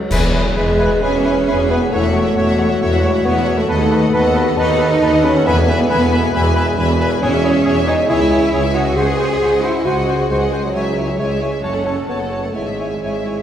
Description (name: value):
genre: classical, dramatic, fast romantic movement for symphony orchestra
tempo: 135 BPM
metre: 4/4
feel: rubato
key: E major, C# minor from 7.2 s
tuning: A4 = 440 Hz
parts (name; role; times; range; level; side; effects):
- mellow bassoon; accompaniment; 0.0-13.4 s; F#3 to G#4; -20 LUFS; equal; none
- rich symphonic cello section; bass; 0.0-13.4 s; F#3 to G#4; -21 LUFS; right 1 dB; none
- rich symphonic violin section; melody; 0.1-13.4 s; D#5 to B5; -29 LUFS; left 4 dB; none
- clear studio violin section; second line; 0.1-13.4 s; G#4 to E5; -28 LUFS; left 2 dB; none
- concert flute; second line; 0.1-13.3 s; E5 to A5; -29 LUFS; left 2 dB; none
- warm oboe; second line; 0.1-13.4 s; G#4 to C#5; -26 LUFS; equal; none
- rich symphonic viola section; accompaniment; 0.1-13.4 s; E4 to B4; -27 LUFS; left 1 dB; none
- mellow French horn section; sustained chords; 0.1-13.4 s; F#4 to E5; -23 LUFS; left 1 dB; none
- clear symphonic double bass section; bass; 0.1-13.4 s; F#1 to E2; -22 LUFS; right 1 dB; none
- warm tuba; bass; 0.1-13.4 s; E1 to D#2; -22 LUFS; right 1 dB; none
- clash cymbals and concert bass drum; percussion; 0.1-1.0 s; none; -22 LUFS; left 1 dB; none
room: wet scoring stage reverb, RT60 1.7 s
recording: heard from further back in the room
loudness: -13 LUFS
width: side -10 dB against mid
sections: 0.1-13.4 A section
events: band accent 0.1-0.6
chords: 0.1 E; 1.9 F#m7/E; 3.7 B7/D#; 5.5 E; 7.2 C#m/E; 8.1 C#m; 9.0 G#7/C#; 10.7 C#m; 11.6 F#m; 12.5 C#m/G#